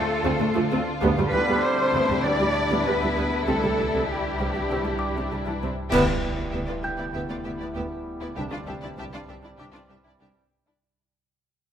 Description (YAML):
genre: cinematic, suspense film score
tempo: 98 BPM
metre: 4/4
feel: straight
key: unclear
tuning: A4 = 440 Hz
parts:
  - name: rich studio violin section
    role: melody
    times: 0.0-10.7 s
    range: G4 to E5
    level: -36 LUFS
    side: left 3 dB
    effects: none
  - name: warm symphonic violin section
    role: second line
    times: 0.0-10.7 s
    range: D4 to G4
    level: -31 LUFS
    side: left 2 dB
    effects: none
  - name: mellow French horn section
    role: sustained chords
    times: 0.0-10.5 s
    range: G3 to E4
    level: -31 LUFS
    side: left 2 dB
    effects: none
  - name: warm symphonic cello section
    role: bass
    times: 0.0-10.7 s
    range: C2 to D5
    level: -29 LUFS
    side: equal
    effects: none
  - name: metallic inharmonic drone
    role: drone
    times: 0.0-10.8 s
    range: C2 to D2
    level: -34 LUFS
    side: equal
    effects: chorus, built-in reverb
  - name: dark symphonic viola section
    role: accompaniment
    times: 0.2-10.7 s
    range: E3 to D4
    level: -28 LUFS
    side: equal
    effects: none
  - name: rich symphonic double bass section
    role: bass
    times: 0.2-10.3 s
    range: C2 to D2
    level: -31 LUFS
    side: right 3 dB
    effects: none
  - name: clear trombone section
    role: sustained chords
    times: 1.0-10.5 s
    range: D3 to G3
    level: -34 LUFS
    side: right 3 dB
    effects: none
  - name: music box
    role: texture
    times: 5.0-10.8 s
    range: G5 to G6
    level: -36 LUFS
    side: equal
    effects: none
  - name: clash cymbals and concert bass drum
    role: percussion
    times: 5.9-7.1 s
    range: none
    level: -33 LUFS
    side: equal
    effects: none
room: moderate scoring stage reverb, RT60 1.6 s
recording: none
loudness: -22 LUFS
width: side -9 dB against mid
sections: 0.0-5.9 A section; 5.9-10.8 B section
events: fade-out 5.9-10.8; band accent 5.9-6.5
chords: 0.0 Dm7; 1.0 Em7/D; 3.5 Cadd9; 5.9 Em7/D; 8.4 Cadd9